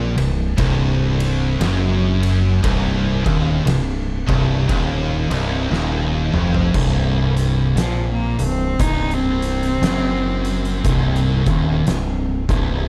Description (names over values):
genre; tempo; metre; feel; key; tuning
stoner and doom metal; 58 BPM; 4/4; swing 60% on 8ths; C minor; A4 = 439 Hz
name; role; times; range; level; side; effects
high-gain distorted guitar; riff; 0.0-6.7 s; C2 to Bb2; -27 LUFS; equal; distortion
thick fuzz guitar; riff; 0.0-12.9 s; C2 to Bb2; -25 LUFS; equal; distortion
thick fuzz guitar; riff; 0.0-12.9 s; C2 to Bb2; -26 LUFS; equal; distortion
growling fingered electric bass; bass; 0.0-12.9 s; C1 to Bb1; -24 LUFS; equal; overdrive
oversized low-tuned drum kit; drums; 0.2-12.7 s; crash cymbal, hi-hat, kick drum, ride cymbal, snare drum, toms; -26 LUFS; equal; none
clear cello; melody; 7.8-11.1 s; F3 to Eb4; -26 LUFS; equal; delay
room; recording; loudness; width
little or no reverb; dark, warm production; -19 LUFS; mono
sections
0.0-6.7 A section; 6.7-12.9 B section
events
drum fill 5.7-6.7; cello solo 6.7-12.9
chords
0.0 Cm